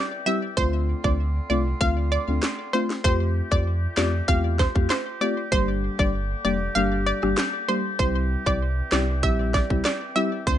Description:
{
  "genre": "dancehall",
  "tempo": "97 BPM",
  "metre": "4/4",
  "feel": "straight",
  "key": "unclear",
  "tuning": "A4 = 436 Hz",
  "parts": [
    { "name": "analog pluck", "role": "melody", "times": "0.0-10.6 s", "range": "C5 to F5", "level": "-27 LUFS", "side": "right 1 dB", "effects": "chorus, ping-pong delay" },
    { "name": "warm woodwind section", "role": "sustained chords", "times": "0.0-10.6 s", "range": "D3 to G4", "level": "-34 LUFS", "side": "left 2 dB", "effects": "sidechain pumping" },
    { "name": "deep mellow chord stab", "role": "accompaniment", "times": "0.3-10.6 s", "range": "G3 to G4", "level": "-27 LUFS", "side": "left 3 dB", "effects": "chorus, sidechain pumping" },
    { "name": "sub bass with octave", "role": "bass", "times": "0.6-10.6 s", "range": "F1 to F2", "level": "-25 LUFS", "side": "equal", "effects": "none" },
    { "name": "island pop drum kit", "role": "drums", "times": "0.6-10.6 s", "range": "handclaps, kick drum, rim click, snare drum", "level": "-24 LUFS", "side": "equal", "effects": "none" }
  ],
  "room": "little or no reverb",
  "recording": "nothing above 10.4 kHz",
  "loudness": "-21 LUFS",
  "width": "side -11 dB against mid",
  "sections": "0.0-10.6 A section",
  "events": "break 0.0-8.0; kick muted 6.8-8.0",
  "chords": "0.0 C; 0.6 Dm7; 3.0 Fadd9; 5.5 Gm; 8.0 C",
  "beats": "| 0.57 1.19 1.81 2.43 | 3.05 3.67 4.28 4.90 | 5.52 6.14 6.76 7.38 | 8.00 8.61 9.23 9.85 | 10.47"
}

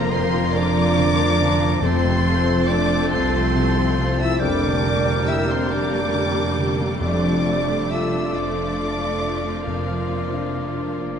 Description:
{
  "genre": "cinematic, emotional film score for orchestra",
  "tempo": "46 BPM (dotted quarters)",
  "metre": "6/8",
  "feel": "rubato",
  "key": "unclear",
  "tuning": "A4 = 439 Hz",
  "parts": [
    { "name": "warm symphonic violin section", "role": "melody", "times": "0.0-11.0 s", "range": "F5 to E6", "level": "-28 LUFS", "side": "left 4 dB", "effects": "none" },
    { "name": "silver concert flute", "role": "second line", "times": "0.0-11.0 s", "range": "F4 to E5", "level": "-30 LUFS", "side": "right 1 dB", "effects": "none" },
    { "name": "warm clarinet", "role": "second line", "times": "0.0-11.2 s", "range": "F4 to Bb4", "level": "-32 LUFS", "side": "left 1 dB", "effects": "none" },
    { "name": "warm oboe", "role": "second line", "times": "0.0-11.2 s", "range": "D5 to Bb5", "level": "-30 LUFS", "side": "equal", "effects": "none" },
    { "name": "warm symphonic violin section", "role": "second line", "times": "0.0-11.2 s", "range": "G3 to Bb4", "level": "-32 LUFS", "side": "left 2 dB", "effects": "none" },
    { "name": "dark baby grand piano", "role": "accompaniment", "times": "0.0-11.2 s", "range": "F2 to Bb4", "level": "-27 LUFS", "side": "left 2 dB", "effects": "none" },
    { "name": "rich symphonic viola section", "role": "accompaniment", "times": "0.0-11.2 s", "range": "F3 to C4", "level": "-29 LUFS", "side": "right 2 dB", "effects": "none" },
    { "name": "clear French horn section", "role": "sustained chords", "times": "0.0-11.0 s", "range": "F3 to F4", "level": "-26 LUFS", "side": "left 2 dB", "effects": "none" },
    { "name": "concert harp", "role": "arpeggios", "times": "0.0-11.2 s", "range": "F2 to F5", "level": "-29 LUFS", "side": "left 7 dB", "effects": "none" },
    { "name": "rich symphonic cello section", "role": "bass", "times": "0.0-11.2 s", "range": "C2 to F2", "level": "-26 LUFS", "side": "right 4 dB", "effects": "none" },
    { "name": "warm symphonic double bass section", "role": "bass", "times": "0.0-11.2 s", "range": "F1 to C2", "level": "-27 LUFS", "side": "right 4 dB", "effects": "none" },
    { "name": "timpani", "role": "percussion", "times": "1.8-3.1, 7.0-11.0 s", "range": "F2", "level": "-32 LUFS", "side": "equal", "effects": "none" }
  ],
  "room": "moderate scoring stage reverb, RT60 1.8 s",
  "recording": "nothing above 10.4 kHz",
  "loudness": "-18 LUFS",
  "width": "side -7 dB against mid",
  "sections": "0.0-11.2 A section",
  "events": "none",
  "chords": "0.0 Bb/F; 1.8 F; 4.4 Gm/F; 7.0 Dm/F; 9.7 Bb/F",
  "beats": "0.54 | 1.82 3.11 | 4.41 5.70 | 7.01 8.33 | 9.67 11.00"
}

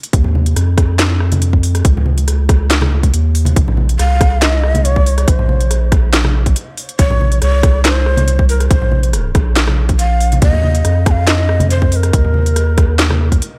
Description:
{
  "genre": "deep dubstep",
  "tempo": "140 BPM",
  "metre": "4/4",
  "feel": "half-time",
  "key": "Bb minor",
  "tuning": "A4 = 443 Hz",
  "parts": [
    { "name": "garage drum kit", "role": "drums", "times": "0.0-13.5 s", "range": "handclaps, hi-hat, rim click, snare drum", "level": "-21 LUFS", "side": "equal", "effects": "none" },
    { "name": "soft dub sub bass", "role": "bass", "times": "0.1-13.4 s", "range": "Bb1 to F2", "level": "-16 LUFS", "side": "equal", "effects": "none" },
    { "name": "electronic kick drum", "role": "drums", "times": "0.1-13.4 s", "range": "none", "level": "-15 LUFS", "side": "equal", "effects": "none" },
    { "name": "congas", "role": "percussion", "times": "0.2-13.2 s", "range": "none", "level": "-24 LUFS", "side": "equal", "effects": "none" },
    { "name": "breathy mellow shakuhachi", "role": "melody", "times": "4.0-13.2 s", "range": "Bb4 to A5", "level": "-23 LUFS", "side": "equal", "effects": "dub echo" }
  ],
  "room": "little or no reverb",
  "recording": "none",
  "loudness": "-13 LUFS",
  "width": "mono",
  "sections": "0.0-13.6 A section",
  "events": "none",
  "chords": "0.0 Dbadd9; 3.6 Bbsus2; 10.4 Eb5",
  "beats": "| 0.13 0.56 0.99 1.42 | 1.85 2.28 2.71 3.13 | 3.56 3.99 4.42 4.85 | 5.28 5.71 6.13 6.56 | 6.99 7.42 7.85 8.28 | 8.71 9.13 9.56 9.99 | 10.42 10.85 11.28 11.71 | 12.13 12.56 12.99 13.42"
}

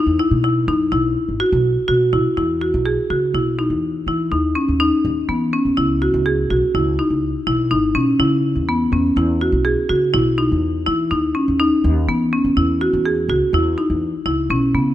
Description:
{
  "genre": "contemporary instrumental, chamber music in an uneven meter",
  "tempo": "124 BPM",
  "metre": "7/4",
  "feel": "straight",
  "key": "E major",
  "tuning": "A4 = 439 Hz",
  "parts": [
    { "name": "marimba with hard mallets", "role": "arpeggios", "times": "0.0-14.9 s", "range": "B3 to G#4", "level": "-17 LUFS", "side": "equal", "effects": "none" },
    { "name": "upright bass", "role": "bass", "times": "0.1-14.9 s", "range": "G#1 to E3", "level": "-22 LUFS", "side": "equal", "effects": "none" }
  ],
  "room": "light reverb",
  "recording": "close, detailed microphones",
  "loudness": "-16 LUFS",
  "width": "side -13 dB against mid",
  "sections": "0.0-2.4 A section; 2.4-14.9 B section",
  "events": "none",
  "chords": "0.0 Bsus4; 2.4 Emaj7(no3); 5.8 C#m7; 9.2 Emaj7(no3)",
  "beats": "0.43 0.92 1.41 1.89 | 2.38 2.86 3.35 3.83 4.32 4.80 5.29 | 5.77 6.26 6.74 7.23 7.71 8.20 8.68 | 9.17 9.65 10.14 10.62 11.11 11.59 12.08 | 12.56 13.05 13.53 14.02 14.50"
}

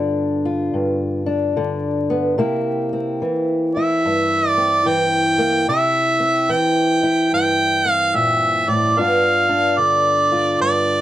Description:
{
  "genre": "acoustic country blues, solo or duo",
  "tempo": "73 BPM",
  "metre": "4/4",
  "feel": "swing 64% on 8ths",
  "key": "unclear",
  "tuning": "A4 = 439 Hz",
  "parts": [
    { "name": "fingerpicked old ladder-braced acoustic guitar", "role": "accompaniment", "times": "0.0-11.0 s", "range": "G2 to F4", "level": "-19 LUFS", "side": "left 1 dB", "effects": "none" },
    { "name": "clear harmonica", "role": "melody", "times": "3.7-11.0 s", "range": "D5 to G5", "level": "-16 LUFS", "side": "right 1 dB", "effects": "none" }
  ],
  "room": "moderate studio reverb, RT60 0.6 s",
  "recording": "dark, warm production, vinyl crackle",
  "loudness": "-16 LUFS",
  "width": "side -13 dB against mid",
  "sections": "0.0-11.0 A section",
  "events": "none",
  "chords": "0.0 G7; 2.4 C7; 9.0 G7",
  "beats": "0.75 1.57 | 2.40 3.22 4.04 4.87 | 5.69 6.51 7.33 8.16 | 8.98 9.80 10.62"
}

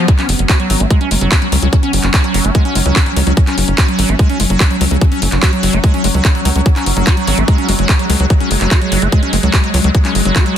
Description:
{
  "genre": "psychedelic trance",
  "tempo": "146 BPM",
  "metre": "4/4",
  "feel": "straight",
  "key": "unclear",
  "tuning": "A4 = 444 Hz",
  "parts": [
    { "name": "swarming drone", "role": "sustained chords", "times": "0.0-10.6 s", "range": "F#3 to C#4", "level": "-19 LUFS", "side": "equal", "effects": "built-in reverb, sidechain pumping" },
    { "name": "liquid acid bass", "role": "riff", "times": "0.0-10.6 s", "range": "F#3 to F#4", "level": "-19 LUFS", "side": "moving between left 5 dB and right 6 dB", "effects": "chorus, auto-pan, sidechain pumping, digital delay" },
    { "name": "drum and bass drum kit", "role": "drums", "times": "0.1-10.5 s", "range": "handclaps, hi-hat", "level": "-18 LUFS", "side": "left 1 dB", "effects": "overdrive" },
    { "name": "electronic kick drum", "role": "drums", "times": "0.1-10.4 s", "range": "none", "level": "-12 LUFS", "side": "equal", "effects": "none" },
    { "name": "tight sequencer bass", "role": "bass", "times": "0.3-10.3 s", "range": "F#1 to C#2", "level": "-15 LUFS", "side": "equal", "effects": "tube saturation" }
  ],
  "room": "little or no reverb",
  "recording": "dense, heavily limited modern master",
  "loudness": "-10 LUFS",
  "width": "side -9 dB against mid",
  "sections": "0.1-10.6 A section",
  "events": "drop 0.1-10.6",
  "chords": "0.1 F#5",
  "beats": "| 0.08 0.49 0.91 1.32 | 1.73 2.14 2.55 2.96 | 3.37 3.78 4.19 4.60 | 5.01 5.43 5.84 6.25 | 6.66 7.07 7.48 7.89 | 8.30 8.71 9.12 9.54 | 9.95 10.36"
}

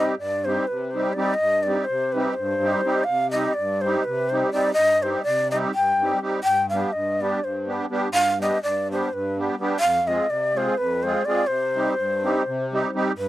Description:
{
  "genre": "balkan folk",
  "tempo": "250 BPM (eighths)",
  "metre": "7/8",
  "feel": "straight",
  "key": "C harmonic minor",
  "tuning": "A4 = 440 Hz",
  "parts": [
    { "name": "breathy shakuhachi", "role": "melody", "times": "0.0-13.3 s", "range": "B4 to G5", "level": "-22 LUFS", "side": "equal", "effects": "none" },
    { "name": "musette accordion", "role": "accompaniment", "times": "0.0-13.3 s", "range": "F2 to Ab4", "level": "-25 LUFS", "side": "right 1 dB", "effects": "none" }
  ],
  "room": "little or no reverb",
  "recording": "dry, close 1970s-style studio recording",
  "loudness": "-20 LUFS",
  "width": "side -15 dB against mid",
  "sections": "0.0-13.2 A section",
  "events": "none",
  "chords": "0.0 Cm; 6.4 G; 9.8 Fm; 11.5 Cm",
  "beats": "0.18 0.42 0.66 0.91 1.15 | 1.39 1.63 1.87 2.11 2.35 2.59 2.83 | 3.08 3.32 3.56 3.80 4.04 4.28 4.52 | 4.76 5.00 5.25 5.49 5.73 5.97 6.21 | 6.45 6.69 6.93 7.17 7.41 7.65 7.89 | 8.13 8.37 8.61 8.85 9.09 9.33 9.57 | 9.81 10.05 10.29 10.53 10.77 11.01 11.25 | 11.49 11.73 11.96 12.21 12.44 12.68 12.92 | 13.16"
}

